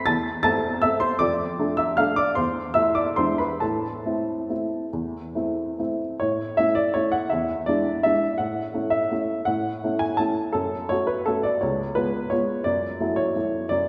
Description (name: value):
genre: classical, piano waltz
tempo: 134-181 BPM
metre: 3/4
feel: rubato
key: A minor, A major from 6.2 s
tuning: A4 = 439 Hz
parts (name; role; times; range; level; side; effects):
- warm upright piano; solo; 0.0-13.9 s; C#2 to A6; -24 LUFS; equal; none
room: wet concert hall reverb, RT60 2.2 s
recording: heard from further back in the room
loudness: -24 LUFS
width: mono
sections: 0.0-6.2 A section; 6.2-13.9 B section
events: none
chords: 0.0 Am; 1.2 Dm/F; 2.4 Am/E; 3.2 E7; 3.6 Am; 6.2 A; 7.3 E7; 8.4 A; 10.5 F#m; 11.6 C#7; 12.7 F#m7